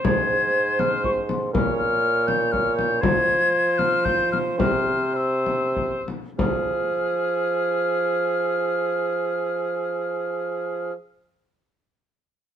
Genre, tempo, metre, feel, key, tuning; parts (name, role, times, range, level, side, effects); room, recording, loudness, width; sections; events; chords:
classical, renaissance-style consort dance; 93-122 BPM; 3/4; straight; F harmonic minor; A4 = 440 Hz
mellow hollow concert flute; melody; 0.0-10.9 s; C6 to Ab6; -25 LUFS; left 4 dB
mellow cor anglais; second line; 0.0-10.9 s; Ab4 to Db5; -28 LUFS; right 4 dB
warm bassoon; bass; 0.0-10.9 s; Ab2 to F3; -24 LUFS; right 2 dB
frame drum; percussion; 0.0-6.7 s; -26 LUFS; left 3 dB
light reverb; dark, warm production; -20 LUFS; side -9 dB against mid
0.0-6.4 A section; 6.4-10.3 B section
slowing down 2.3-6.4
0.1 Ab; 1.5 Bbm; 3.0 Fm; 4.6 C; 6.4 Fm